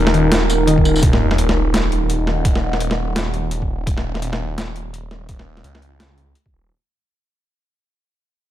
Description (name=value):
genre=half-time drum and bass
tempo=169 BPM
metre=4/4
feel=swing 59% on 16ths, half-time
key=Eb minor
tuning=A4 = 439 Hz
part: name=dark analog pad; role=sustained chords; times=0.0-6.7 s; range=Ab3 to Gb5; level=-23 LUFS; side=right 2 dB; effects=chorus, sidechain pumping
part: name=warbly dusty pluck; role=arpeggios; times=0.0-1.0 s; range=Eb3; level=-21 LUFS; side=left 3 dB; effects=chorus, dub echo
part: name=phased detuned saw bass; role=bass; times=0.0-6.7 s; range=Eb1 to Db2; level=-20 LUFS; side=equal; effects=phaser
part: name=boom bap sampler-style drum kit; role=drums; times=0.1-6.4 s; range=hi-hat, snare drum, tambourine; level=-22 LUFS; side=equal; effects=overdrive
part: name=electronic kick drum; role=drums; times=0.8-6.5 s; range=none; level=-18 LUFS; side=equal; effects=overdrive
part: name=sub drop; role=sound effects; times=1.0-2.4 s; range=none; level=-24 LUFS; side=right 1 dB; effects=none
room=little or no reverb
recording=none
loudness=-15 LUFS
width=side -12 dB against mid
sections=0.0-1.0 A section; 1.0-6.7 B section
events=drop 0.0-1.0; fade-out 1.0-6.7; impact 1.0-2.4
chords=0.0 Abm/Eb; 1.0 Ebm7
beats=0.32 0.67 | 1.03 1.38 1.74 2.09 | 2.45 2.80 3.16 3.51 | 3.87 4.22 4.58 4.93 | 5.29 5.64 6.00 6.35